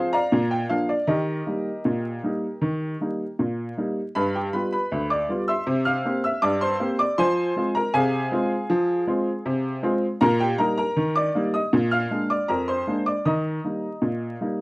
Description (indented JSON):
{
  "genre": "ragtime piano",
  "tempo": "79 BPM",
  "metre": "2/4",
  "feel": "straight",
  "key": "Eb major",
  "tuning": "A4 = 441 Hz",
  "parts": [
    { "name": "clear upright piano", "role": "solo", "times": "0.0-14.6 s", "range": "D2 to F6", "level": "-21 LUFS", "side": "equal", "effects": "none" }
  ],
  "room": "little or no reverb",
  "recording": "dry, close 1970s-style studio recording, vinyl crackle",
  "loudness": "-21 LUFS",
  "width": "side -24 dB against mid",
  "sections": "0.0-4.2 A section; 4.2-14.6 B section",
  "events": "none",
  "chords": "0.3 Bb; 1.1 Eb; 4.2 G7; 5.7 C7; 7.2 Fm; 10.2 Eb/Bb; 11.7 Bb7; 13.2 Eb"
}